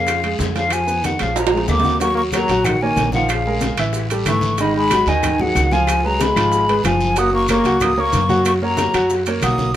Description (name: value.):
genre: Afro-Cuban jazz.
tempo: 186 BPM.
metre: 4/4.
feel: straight.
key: unclear.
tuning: A4 = 440 Hz.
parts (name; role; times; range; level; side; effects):
hollow concert flute; melody; 0.0-9.7 s; F5 to Eb6; -20 LUFS; left 1 dB; none.
clear trombone; second line; 0.0-9.8 s; Db3 to Bb3; -24 LUFS; left 2 dB; none.
upright bass; bass; 0.0-9.8 s; Gb1 to Gb2; -23 LUFS; equal; none.
warm baby grand piano; accompaniment; 0.1-9.7 s; Eb3 to Gb5; -21 LUFS; right 1 dB; none.
bongos; percussion; 0.1-9.6 s; none; -30 LUFS; left 5 dB; none.
claves; percussion; 0.1-9.6 s; none; -32 LUFS; left 4 dB; none.
congas; percussion; 0.1-9.8 s; none; -27 LUFS; left 1 dB; none.
guiro; percussion; 0.1-9.8 s; none; -33 LUFS; left 3 dB; none.
maracas; percussion; 0.1-9.7 s; none; -33 LUFS; right 3 dB; none.
timbales; percussion; 0.1-9.6 s; none; -25 LUFS; right 5 dB; none.
room: moderate studio reverb, RT60 0.7 s.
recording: minimal, uncompressed stereo recording.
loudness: -15 LUFS.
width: side -12 dB against mid.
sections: 0.0-2.0 A section; 2.0-9.8 B section.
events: drum fill 1.4-2.0.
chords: 0.0 Bbm7 (rootless); 0.7 Fdim; 1.4 Bb7; 2.0 Ebm7; 3.3 Bbm7; 3.9 A7; 4.6 Abm7; 5.9 Db7; 7.2 Gb.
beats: 0.07 0.39 | 0.71 1.04 1.36 1.68 | 2.00 2.33 2.65 2.97 | 3.29 3.62 3.94 4.26 | 4.59 4.91 5.23 5.55 | 5.88 6.20 6.52 6.84 | 7.17 7.49 7.81 8.13 | 8.46 8.78 9.10 9.42 | 9.74.